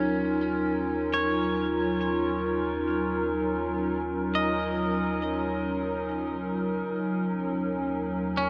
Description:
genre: ambient.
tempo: free time.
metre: none.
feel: none.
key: Eb minor.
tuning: A4 = 440 Hz.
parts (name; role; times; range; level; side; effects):
warbly tape-like pad; sustained chords; 0.0-8.5 s; Gb3 to Bb4; -29 LUFS; equal; chorus, built-in reverb.
clean electric guitar; arpeggios; 0.0-8.5 s; Db4 to Eb5; -34 LUFS; equal; tape echo.
warm sub bass; bass; 0.0-8.5 s; Eb2; -44 LUFS; equal; none.
room: wet huge ambient reverb, RT60 7.8 s.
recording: worn, warbling old tape, cassette tape, warbly pitch drift.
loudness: -28 LUFS.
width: mono.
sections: 0.0-8.5 A section.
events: fade-in on sub bass 0.0-8.5.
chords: 0.0 Ebm9.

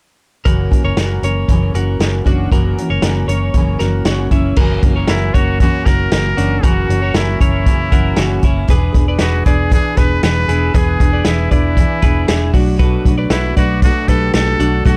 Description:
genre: jangly indie pop.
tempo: 117 BPM.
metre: 4/4.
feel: straight.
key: unclear.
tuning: A4 = 443 Hz.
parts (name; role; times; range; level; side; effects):
picked steel-string acoustic guitar; accompaniment; 0.4-15.0 s; F#2 to G#4; -23 LUFS; equal; none.
twelve-string electric guitar; arpeggios; 0.5-15.0 s; C#4 to D5; -24 LUFS; equal; none.
vintage muted fingered electric bass; bass; 0.5-15.0 s; E1 to B1; -20 LUFS; equal; none.
vintage drum kit; drums; 0.5-15.0 s; crash cymbal, hi-hat, kick drum, snare drum; -17 LUFS; equal; none.
bright trumpet; melody; 5.1-15.0 s; E4 to B4; -23 LUFS; equal; none.
room: little or no reverb.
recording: dark, warm production.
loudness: -14 LUFS.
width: mono.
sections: 0.5-4.6 A section; 4.6-15.0 B section.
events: none.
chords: 0.5 F#7; 8.7 E7; 12.5 Bm7.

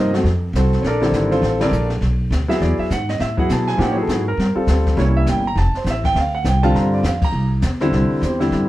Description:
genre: jazz piano trio.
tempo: 203 BPM.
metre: 4/4.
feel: swing 60% on 8ths.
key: F major.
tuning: A4 = 440 Hz.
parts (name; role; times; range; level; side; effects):
warm concert grand piano; melody; 0.0-8.7 s; C3 to Bb5; -19 LUFS; equal; none.
upright bass; bass; 0.0-8.7 s; F1 to B2; -19 LUFS; equal; none.
jazz brush drum kit; drums; 0.1-8.7 s; brushed snare drum, crash cymbal, hi-hat, kick drum, ride cymbal, snare drum; -26 LUFS; left 1 dB; none.
room: moderate studio reverb, RT60 0.7 s.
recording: heard from further back in the room.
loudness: -16 LUFS.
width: side -15 dB against mid.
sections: 0.0-7.9 A section.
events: band accent 1.6, 7.2.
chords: 0.2 F; 0.8 Bbmaj9; 2.0 Bm; 2.6 E; 3.2 A5; 4.4 Gsus2; 5.0 C7b9; 5.6 F; 6.2 Dm7; 6.7 G5; 7.3 C.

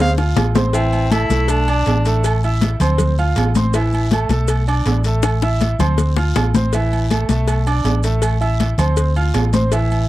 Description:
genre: latin, salsa.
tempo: 160 BPM.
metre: 4/4.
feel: straight.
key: A minor.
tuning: A4 = 441 Hz.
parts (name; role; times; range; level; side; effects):
bright concert grand piano; accompaniment; 0.0-10.0 s; E3 to F6; -22 LUFS; right 3 dB; none.
hollow-body short-scale fingered electric bass; bass; 0.0-10.1 s; A1 to D2; -17 LUFS; equal; none.
timbales and agogo bells; percussion; 0.0-10.1 s; none; -24 LUFS; right 5 dB; none.
bongos and cowbell; percussion; 0.2-9.9 s; none; -24 LUFS; left 7 dB; none.
congas; percussion; 0.2-10.1 s; none; -22 LUFS; left 3 dB; none.
maracas; percussion; 0.2-10.1 s; none; -34 LUFS; right 8 dB; none.
guiro; percussion; 0.4-10.1 s; none; -35 LUFS; left 8 dB; none.
clear baritone saxophone; second line; 0.7-2.2 s; C4 to E4; -21 LUFS; left 2 dB; none.
room: little or no reverb.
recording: dry, close 1970s-style studio recording.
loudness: -14 LUFS.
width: side -16 dB against mid.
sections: 0.7-10.1 A section.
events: drum fill 0.0-0.7, 5.2-6.7.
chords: 0.0 Dm7; 0.7 Am; 1.5 Asus24; 2.2 Am; 3.0 Dm7; 3.7 A5; 4.5 Asus24; 5.2 Am; 6.0 Dm7; 6.7 A5; 7.5 Asus24; 8.2 Am; 9.0 Dm7.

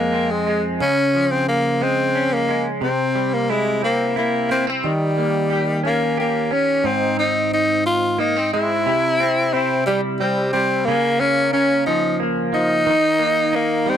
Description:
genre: six-eight pop ballad.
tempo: 60 BPM (dotted quarters).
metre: 6/8.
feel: straight.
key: unclear.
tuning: A4 = 442 Hz.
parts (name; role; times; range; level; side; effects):
raspy tenor saxophone; melody; 0.0-14.0 s; G3 to F4; -18 LUFS; left 1 dB; none.
direct-recorded clean electric guitar; accompaniment; 0.0-14.0 s; F2 to G4; -21 LUFS; right 1 dB; double-tracked left and right.
room: moderate booth ambience, RT60 0.2 s.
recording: dry, close 1970s-style studio recording.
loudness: -17 LUFS.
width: side -9 dB against mid.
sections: 0.0-6.8 A section; 6.8-14.0 B section.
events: none.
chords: 0.0 Fm; 0.8 Db; 2.8 C; 4.8 Eb7; 6.8 Ab; 8.9 C; 10.9 Bbm/Db; 12.9 Eb5.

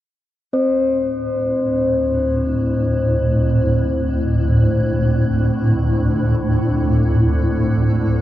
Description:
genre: dark ambient drone.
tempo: free time.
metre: none.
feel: none.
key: unclear.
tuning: A4 = 442 Hz.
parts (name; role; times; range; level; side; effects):
swarming drone; drone; 1.3-8.2 s; D2 to A2; -17 LUFS; equal; built-in reverb.
quartz singing bowl; texture; 0.5-8.2 s; C4 to C5; -21 LUFS; left 2 dB; none.
granular cloud pad; sustained chords; 1.5-8.2 s; D4 to A4; -28 LUFS; equal; built-in reverb.
room: wet huge ambient reverb, RT60 8.5 s.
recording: worn, warbling old tape, cassette tape, warbly pitch drift.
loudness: -15 LUFS.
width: side -14 dB against mid.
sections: 0.5-8.2 A section.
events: none.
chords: 0.5 Dsus2.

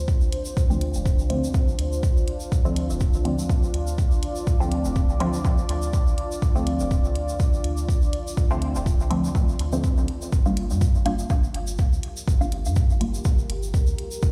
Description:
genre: dub techno.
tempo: 123 BPM.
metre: 4/4.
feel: swing 54% on 16ths.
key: D minor.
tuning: A4 = 441 Hz.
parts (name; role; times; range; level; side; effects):
deep dark ambient pad; sustained chords; 0.0-14.3 s; D4 to D5; -35 LUFS; equal; chorus, built-in reverb, sidechain pumping.
pure sine sub bass; bass; 0.0-14.3 s; D1 to G2; -28 LUFS; equal; sidechain pumping.
electronic kick drum; drums; 0.1-14.3 s; none; -23 LUFS; equal; none.
tube shaker; percussion; 0.1-14.3 s; none; -43 LUFS; equal; none.
electronic hi-hat; drums; 0.3-14.1 s; none; -38 LUFS; equal; none.
filtered dub chord stab; stabs; 0.7-13.2 s; D3 to F4; -31 LUFS; equal; phaser, sidechain pumping, dub echo.
room: light reverb.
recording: played on a big sound system in a bare room, large studio reverb.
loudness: -23 LUFS.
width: mono.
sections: 0.0-14.3 A section.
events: none.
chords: 0.0 Dm7; 10.3 Gm7.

